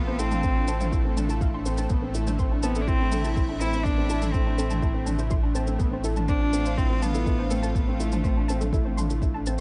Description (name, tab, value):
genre	piano and strings electronica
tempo	123 BPM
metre	4/4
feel	straight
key	unclear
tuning	A4 = 437 Hz
part	warm cello	melody	0.0-9.2 s	A3 to E4	-33 LUFS	equal	delay
part	lush unison pad	sustained chords	0.0-9.6 s	A2 to A4	-37 LUFS	equal	chorus, sidechain pumping
part	soft round pluck	arpeggios	0.0-9.6 s	A4 to C6	-40 LUFS	equal	analog chorus, sidechain pumping, delay
part	felt-muted upright piano	riff	0.0-9.6 s	B3 to E4	-33 LUFS	equal	delay
part	warm sub bass	bass	0.0-9.6 s	A1	-30 LUFS	equal	sidechain pumping
part	electronic shaker and toms	drums	0.2-9.6 s	none	-38 LUFS	equal	none
part	electronic kick drum	drums	0.4-9.3 s	none	-28 LUFS	equal	none
room	little or no reverb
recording	dark, warm production, nothing above 10.6 kHz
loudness	-25 LUFS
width	mono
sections	0.0-9.6 A section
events	none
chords	0.0 F/A; 1.9 Am; 5.8 F/A